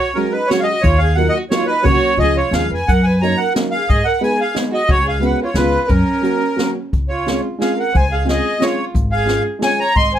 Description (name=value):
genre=musette waltz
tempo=178 BPM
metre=3/4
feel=rubato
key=F# major, Db major from 6.9 s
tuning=A4 = 440 Hz
part: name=accordion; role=melody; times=0.0-10.2 s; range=A#4 to C6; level=-18 LUFS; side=right 1 dB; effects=light tremolo tuning
part: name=dark violin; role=second line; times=0.0-10.2 s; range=C#4 to Eb5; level=-23 LUFS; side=right 2 dB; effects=none
part: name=dark upright piano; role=accompaniment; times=0.1-9.8 s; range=E#3 to G#4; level=-20 LUFS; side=right 1 dB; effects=none
part: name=jazz brush drum kit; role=drums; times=0.2-10.0 s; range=hi-hat, kick drum, snare drum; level=-20 LUFS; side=left 1 dB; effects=none
part: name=upright bass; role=bass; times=0.8-10.2 s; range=Ab1 to G#2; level=-18 LUFS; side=equal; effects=none
room=little or no reverb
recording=close, detailed microphones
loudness=-14 LUFS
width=side -10 dB against mid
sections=0.0-6.9 A section; 6.9-10.2 B section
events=none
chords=0.0 C#sus4; 0.8 D#madd9; 1.8 F#/C#; 2.2 C#; 2.9 F#6; 3.9 G#m; 4.9 C#7sus4; 5.6 C#7; 5.9 F#; 6.9 Dbmaj7; 8.9 Db/Ab